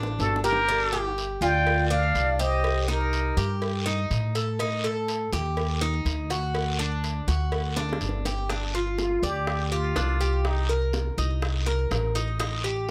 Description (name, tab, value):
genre	latin, Cuban son and guajira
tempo	123 BPM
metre	4/4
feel	straight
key	G minor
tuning	A4 = 441 Hz
part	Cuban tres	arpeggios	0.0-12.9 s	D4 to D5	-32 LUFS	equal	slapback echo
part	upright bass	bass	0.0-12.9 s	G1 to A2	-30 LUFS	equal	none
part	bongos and cowbell	percussion	0.0-12.6 s	none	-38 LUFS	equal	none
part	trumpet with plunger mute	melody	0.2-3.6, 9.0-10.7 s	Eb4 to G5	-29 LUFS	equal	slapback echo
part	breathy mellow jazz flute	second line	0.2-3.6 s	F#4 to D5	-35 LUFS	equal	none
part	guiro	percussion	0.2-12.9 s	none	-39 LUFS	equal	none
room	light reverb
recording	close, detailed microphones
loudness	-26 LUFS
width	mono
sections	0.0-8.5 A section; 8.5-12.9 B section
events	drum fill 0.0-0.7, 7.8-8.5; muted trumpet solo 8.5-12.9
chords	0.0 D; 0.7 Gm7; 2.6 Cm7; 4.6 Ebmaj7#11; 6.5 D; 8.5 G5; 10.4 Cm7; 12.4 Eb(#11)